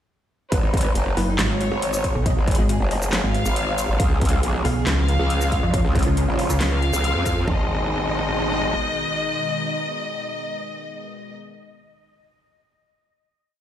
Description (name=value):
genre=heavy wobble dubstep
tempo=138 BPM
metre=4/4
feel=half-time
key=G# dorian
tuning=A4 = 439 Hz
part: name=rich studio violin section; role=melody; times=0.5-11.3 s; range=C#4 to E#5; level=-27 LUFS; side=left 1 dB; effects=dub echo
part: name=growl bass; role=bass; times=0.5-8.7 s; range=F#1 to E#2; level=-22 LUFS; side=equal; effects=chorus, overdrive
part: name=dubstep drum kit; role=drums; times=0.5-7.6 s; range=kick drum, toms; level=-22 LUFS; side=equal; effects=studio ambience
part: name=dubstep drum kit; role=drums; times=0.5-7.3 s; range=handclaps, hi-hat, shaker, snare drum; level=-28 LUFS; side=equal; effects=studio ambience
part: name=pulsing pluck wobble bass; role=bass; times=1.2-6.9 s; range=F#1 to E#2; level=-20 LUFS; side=equal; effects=chorus, overdrive
part: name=supersaw pad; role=sustained chords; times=4.0-11.3 s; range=B2 to E#4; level=-29 LUFS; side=equal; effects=phaser, sidechain pumping
room=light reverb, digital ambience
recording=played on a big sound system in a bare room, stone room reverb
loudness=-19 LUFS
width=side -10 dB against mid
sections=0.5-7.5 drop; 7.5-11.0 final chord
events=drop 0.5-7.5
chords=0.5 N.C.; 4.0 C#; 7.5 G#m